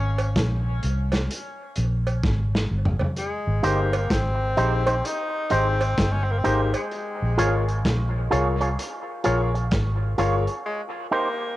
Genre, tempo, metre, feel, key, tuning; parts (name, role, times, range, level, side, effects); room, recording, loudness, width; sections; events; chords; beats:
dub reggae; 64 BPM; 4/4; swing 63% on 16ths; A4 = 442 Hz
warm tenor saxophone; melody; 0.0-11.6 s; Ab3 to Eb4; -30 LUFS; left 1 dB; cassette tape, dub echo, plate reverb
vintage muted fingered electric bass; bass; 0.0-10.5 s; G1 to C2; -23 LUFS; equal; tube saturation
crunchy breakbeat drum kit; drums; 0.2-10.6 s; hi-hat, kick drum, snare drum, toms; -27 LUFS; equal; cassette tape
cowbell; percussion; 0.2-6.9 s; -32 LUFS; right 3 dB; dub echo
electric guitar with an envelope filter; accompaniment; 3.6-11.3 s; Eb4 to Db5; -27 LUFS; right 2 dB; spring reverb, cassette tape, dub echo, plate reverb
warm baby grand piano; stabs; 3.6-10.5 s; Eb4 to Db5; -29 LUFS; left 4 dB; cassette tape, dub echo, plate reverb
light reverb; home recording on cassette; -21 LUFS; side -16 dB against mid
0.0-11.6 A section
break 0.0-3.2, 10.7-11.6; drum fill 2.2-3.2
0.0 Bbm7; 3.2 Abmaj7; 6.9 Bbm7; 10.7 Abmaj9 (rootless)
0.36 1.30 2.23 | 3.17 4.11 5.04 5.98 | 6.91 7.85 8.78 9.72 | 10.65